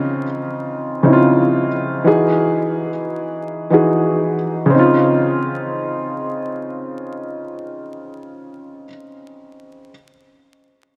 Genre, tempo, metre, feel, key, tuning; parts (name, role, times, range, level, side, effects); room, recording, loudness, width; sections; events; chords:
hip hop; 90 BPM; 4/4; swing 55% on 16ths; Db major; A4 = 440 Hz
dark concert grand piano; accompaniment; 0.0-9.9 s; Db3 to G#4; -18 LUFS; equal; high-pass filter, low-pass filter
wet huge ambient reverb, RT60 3.8 s; dreamy mix soaked in reverb, vinyl crackle; -17 LUFS; mono
0.0-4.7 A section; 4.7-7.4 B section
0.0 Dbmaj9; 2.1 Emaj9; 4.7 Dbmaj9